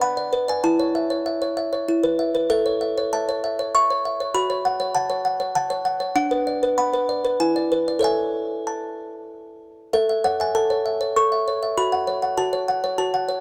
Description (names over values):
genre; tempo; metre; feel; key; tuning
classical, lullaby for music box; 97 BPM; 3/4; straight; A major; A4 = 440 Hz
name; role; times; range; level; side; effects
music box; solo; 0.0-13.4 s; D4 to C#6; -22 LUFS; equal; none
room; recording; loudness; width
moderate plate reverb, RT60 3.2 s; dark, warm production; -22 LUFS; mono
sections
0.0-9.9 A section; 9.9-13.4 B section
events
none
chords
0.0 Bm/D; 0.6 A/E; 1.9 E5; 2.5 A; 4.3 F#m; 6.2 Bm/D; 7.4 E7; 8.0 A; 11.8 F#m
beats
0.02 | 0.64 1.26 1.88 | 2.50 3.13 3.74 | 4.35 4.95 5.55 | 6.16 6.78 7.40 | 8.04 8.67 9.30 | 9.93 10.54 11.16 | 11.77 12.37 12.98